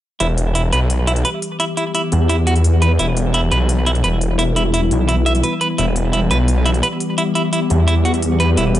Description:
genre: dark technical drum and bass.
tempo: 172 BPM.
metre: 4/4.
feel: straight.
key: E minor.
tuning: A4 = 440 Hz.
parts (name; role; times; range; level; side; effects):
swarming drone; sustained chords; 0.9-8.8 s; E3 to G4; -21 LUFS; left 2 dB; built-in reverb.
clean electric guitar; arpeggios; 0.2-8.6 s; E4 to E5; -20 LUFS; right 2 dB; low-pass filter, dub echo.
snarling distorted saw bass; bass; 0.2-8.8 s; E1 to E2; -16 LUFS; equal; distortion, overdrive.
electronic hi-hat; drums; 0.2-8.8 s; none; -27 LUFS; left 2 dB; small room ambience.
room: digital ambience.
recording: nothing above 10.7 kHz.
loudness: -14 LUFS.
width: side -13 dB against mid.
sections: 0.2-8.8 A section.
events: none.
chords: 0.2 Em.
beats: | 0.20 0.55 0.90 1.25 | 1.60 1.95 2.30 2.64 | 2.99 3.34 3.69 4.04 | 4.39 4.74 5.09 5.43 | 5.78 6.13 6.48 6.83 | 7.18 7.53 7.88 8.23 | 8.57.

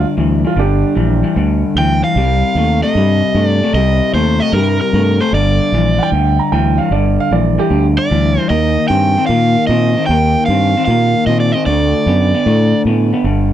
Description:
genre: blues.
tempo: 151 BPM.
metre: 4/4.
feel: swing 68% on 8ths.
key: G minor.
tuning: A4 = 440 Hz.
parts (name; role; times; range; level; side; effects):
clear upright piano; second line; 0.0-1.4, 6.0-7.8 s; D4 to Bb5; -18 LUFS; right 9 dB; none.
electric guitar through a small old amp; riff; 0.0-13.5 s; G2 to C4; -16 LUFS; left 3 dB; spring reverb.
fingered electric bass; bass; 0.0-13.5 s; G1 to Bb2; -14 LUFS; equal; none.
overdriven electric guitar; melody; 1.8-12.8 s; Bb4 to G5; -17 LUFS; right 3 dB; none.
room: light reverb.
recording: none.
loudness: -11 LUFS.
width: side -11 dB against mid.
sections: 0.0-13.5 A section.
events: none.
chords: 0.0 Gm; 2.2 Cm; 5.3 Gm; 8.5 Eb; 11.7 D.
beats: 0.17 | 0.57 0.97 1.36 1.76 | 2.16 2.55 2.95 3.35 | 3.74 4.14 4.54 4.93 | 5.33 5.72 6.12 6.52 | 6.92 7.31 7.71 8.10 | 8.50 8.90 9.29 9.69 | 10.09 10.48 10.88 11.28 | 11.67 12.07 12.46 12.86 | 13.26.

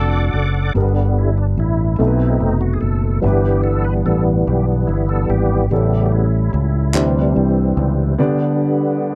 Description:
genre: slow gospel.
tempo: 48 BPM (dotted quarters).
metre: 6/8.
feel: straight.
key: G major.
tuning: A4 = 439 Hz.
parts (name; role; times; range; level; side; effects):
warm horn section; melody; 0.0-0.7 s; D4 to A4; -28 LUFS; equal; none.
warm concert grand piano; accompaniment; 0.0-9.2 s; G2 to D5; -23 LUFS; equal; none.
bright tonewheel organ; sustained chords; 0.0-9.2 s; C#3 to D6; -23 LUFS; equal; slow rotary speaker, chorus vibrato.
fingered electric bass; bass; 0.0-8.2 s; F1 to D2; -19 LUFS; equal; none.
group handclap; percussion; 6.9-7.3 s; none; -27 LUFS; equal; none.
room: little or no reverb.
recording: dark, warm production.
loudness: -17 LUFS.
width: mono.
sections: 0.8-9.2 A section.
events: tonewheel organ solo 0.8-9.2.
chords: 0.0 D; 0.8 G; 2.0 B7b9; 3.2 Em/G; 5.7 A7; 6.9 D9sus4; 8.2 G/D.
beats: | 0.76 2.00 | 3.23 4.47 | 5.71 6.95 | 8.18.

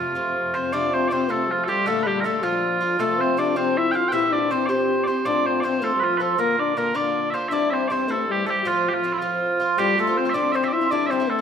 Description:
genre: celtic folk, Celtic jig.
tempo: 106 BPM (dotted quarters).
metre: 6/8.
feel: straight.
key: F major.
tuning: A4 = 441 Hz.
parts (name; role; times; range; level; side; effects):
mellow small bagpipes; melody; 0.0-11.4 s; E4 to G5; -23 LUFS; right 1 dB; none.
Irish bouzouki; accompaniment; 0.0-11.4 s; G2 to G4; -26 LUFS; right 4 dB; none.
bright symphonic string section; drone; 0.0-0.8 s; F2 to C3; -39 LUFS; equal; none.
warm trombone; second line; 0.6-11.4 s; F3 to F4; -24 LUFS; left 6 dB; none.
room: wet recital hall reverb, RT60 1.4 s.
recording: none.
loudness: -19 LUFS.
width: side -7 dB against mid.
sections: 0.7-9.8 A section; 9.8-11.4 B section.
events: none.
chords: 0.0 F; 1.9 Bb; 3.0 F; 4.1 C7; 5.3 F; 6.4 Bb; 7.5 C; 8.7 F; 10.9 Cadd9.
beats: 0.16 | 0.73 1.29 | 1.86 2.43 | 3.00 3.56 | 4.13 4.69 | 5.26 5.83 | 6.39 6.96 | 7.52 8.09 | 8.65 9.21 | 9.78 10.34 | 10.91.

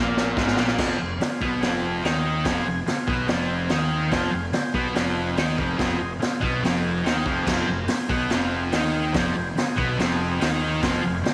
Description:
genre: garage rock duo or trio.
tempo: 144 BPM.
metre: 4/4.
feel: straight.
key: F minor.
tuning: A4 = 440 Hz.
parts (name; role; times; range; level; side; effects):
overdriven combo organ; sustained chords; 0.0-11.3 s; F4 to C6; -34 LUFS; equal; none.
fuzz guitar; riff; 0.0-11.3 s; F2 to Eb4; -27 LUFS; equal; distortion.
fuzz fingered electric bass; bass; 0.0-11.3 s; F1 to Eb2; -33 LUFS; equal; overdrive.
raw garage drum kit; drums; 0.2-11.3 s; crash cymbal, hi-hat, kick drum, snare drum; -28 LUFS; equal; none.
room: light reverb, studio reverb.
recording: none.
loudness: -24 LUFS.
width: mono.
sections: 0.8-11.3 A section.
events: drum fill 0.0-0.8; transistor combo organ fill 3.3-4.1, 6.6-7.5.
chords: 0.0 Bb5; 0.8 Fm.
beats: 0.38 | 0.80 1.22 1.63 2.05 | 2.47 2.88 3.30 3.72 | 4.13 4.55 4.97 5.38 | 5.80 6.22 6.64 7.05 | 7.47 7.89 8.31 8.73 | 9.15 9.57 9.99 10.41 | 10.83 11.25.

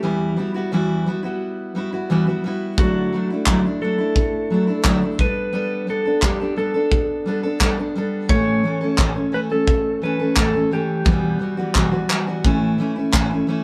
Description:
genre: acoustic pop.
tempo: 87 BPM.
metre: 4/4.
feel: straight.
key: unclear.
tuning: A4 = 440 Hz.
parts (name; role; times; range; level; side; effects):
clean lap steel guitar; melody; 0.0-11.7 s; F#4 to C#5; -26 LUFS; equal; none.
fingerpicked steel-string acoustic guitar; accompaniment; 0.0-13.6 s; E2 to A4; -23 LUFS; equal; none.
modern studio drum kit; drums; 2.8-13.3 s; handclaps, kick drum; -22 LUFS; equal; none.
room: moderate small room reverb, RT60 0.5 s.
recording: band playing live in one room.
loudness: -20 LUFS.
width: mono.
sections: 0.0-13.6 A section.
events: none.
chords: 0.0 Emadd9; 2.8 Dadd9; 5.2 Gadd9; 8.3 A; 11.1 Emadd9; 12.4 A.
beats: | 0.02 0.71 1.40 2.09 | 2.78 3.46 4.15 4.84 | 5.53 6.22 6.91 7.61 | 8.30 8.99 9.68 10.37 | 11.06 11.75 12.45 13.14.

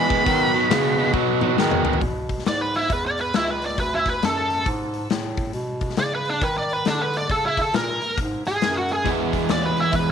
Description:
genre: blues rock power trio and southern rock.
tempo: 137 BPM.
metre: 4/4.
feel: swing 63% on 8ths.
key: unclear.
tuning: A4 = 440 Hz.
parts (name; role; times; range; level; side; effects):
octave-fuzz lead guitar; melody; 0.0-10.1 s; D4 to B5; -23 LUFS; right 1 dB; wah, distortion, tape echo.
overdriven tonewheel organ; sustained chords; 0.0-2.0, 9.0-10.1 s; D#4 to C5; -30 LUFS; right 12 dB; slow rotary speaker.
overdriven semi-hollow guitar; riff; 0.0-2.0, 9.0-10.1 s; B2 to E4; -22 LUFS; right 1 dB; none.
clear bass clarinet; bass; 0.0-10.1 s; C#2 to E3; -27 LUFS; right 1 dB; none.
big rock drum kit; drums; 0.1-10.1 s; hi-hat, kick drum, snare drum, toms; -26 LUFS; left 4 dB; none.
room: light reverb, studio ambience.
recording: 1960s-style stereo.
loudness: -20 LUFS.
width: side -8 dB against mid.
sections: 0.0-2.0 A section; 2.0-10.1 B section.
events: lead electric guitar solo 0.0-2.0; drum fill 1.1-2.0.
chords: 0.0 B; 2.0 E; 3.8 D; 5.3 B; 7.3 F#; 9.1 E.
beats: | 0.27 0.70 1.14 1.58 | 2.02 2.46 2.90 3.34 | 3.78 4.22 4.66 5.10 | 5.54 5.98 6.42 6.86 | 7.30 7.74 8.18 8.62 | 9.06 9.49 9.93.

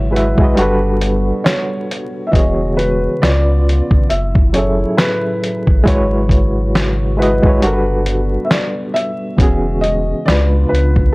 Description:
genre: lo-fi hip hop.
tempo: 68 BPM.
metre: 4/4.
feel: swing 59% on 16ths.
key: E major.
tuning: A4 = 441 Hz.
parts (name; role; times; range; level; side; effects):
felt-muted upright piano; melody; 0.0-11.1 s; B4 to E5; -21 LUFS; equal; low-pass filter.
bright reed electric piano; accompaniment; 0.0-11.1 s; C#3 to E5; -18 LUFS; equal; fast tremolo, low-pass filter.
dark analog pad; sustained chords; 0.0-11.1 s; A2 to F#4; -26 LUFS; equal; lush chorus, low-pass filter.
warm sub bass; bass; 0.0-11.1 s; E1 to C#2; -17 LUFS; equal; tube saturation.
lo-fi sampler-style drum kit; drums; 0.2-11.1 s; hi-hat, kick drum, snare drum; -14 LUFS; equal; vintage 12-bit sampler grit.
room: digital ambience.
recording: dry, gritty hardware recording, vinyl crackle.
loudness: -12 LUFS.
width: side -24 dB against mid.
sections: 0.0-9.4 A section; 9.4-11.1 B section.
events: break 7.6-9.4.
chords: 0.0 E69/G#; 0.6 Gmaj7; 2.3 E69; 3.2 C#7b9; 4.1 F#m9; 5.9 E69/G#; 7.6 Gmaj7; 9.4 E69; 10.3 C#7b9.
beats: 0.57 1.45 | 2.33 3.22 4.10 4.98 | 5.86 6.75 7.63 8.51 | 9.39 10.28.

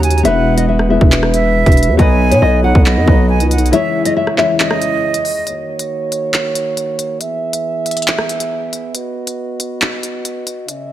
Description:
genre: hip hop, drill.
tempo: 138 BPM.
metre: 4/4.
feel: half-time.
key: unclear.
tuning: A4 = 439 Hz.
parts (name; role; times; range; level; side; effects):
nylon-string guitar; melody; 0.0-5.4 s; Db5 to Gb5; -18 LUFS; left 3 dB; low-pass filter, digital delay.
breathy silver concert flute; second line; 0.0-5.4 s; D#5 to Ab5; -20 LUFS; right 6 dB; digital delay.
warm baby grand piano; accompaniment; 0.0-5.5 s; B2 to Db5; -18 LUFS; left 4 dB; low-pass filter.
mellow French horn section; sustained chords; 0.0-10.9 s; Db3 to E5; -21 LUFS; right 2 dB; none.
growling 808-style bass; bass; 0.0-3.7 s; E1 to B2; -14 LUFS; equal; none.
drill drum kit; drums; 0.0-10.8 s; handclaps, hi-hat, kick drum, rim click; -15 LUFS; equal; none.
room: light reverb, studio ambience.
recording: none.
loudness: -12 LUFS.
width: side -12 dB against mid.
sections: 0.0-5.5 A section; 5.5-10.9 B section.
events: break 3.7-5.5, 5.5-10.9.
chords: 0.2 E; 2.0 B; 3.7 Dbmadd9; 5.5 Ebm7; 7.2 E; 8.9 B.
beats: | 0.25 0.69 1.12 1.55 | 1.99 2.42 2.86 3.29 | 3.73 4.16 4.60 5.03 | 5.47 5.90 6.34 6.77 | 7.21 7.64 8.08 8.51 | 8.95 9.38 9.81 10.25 | 10.69.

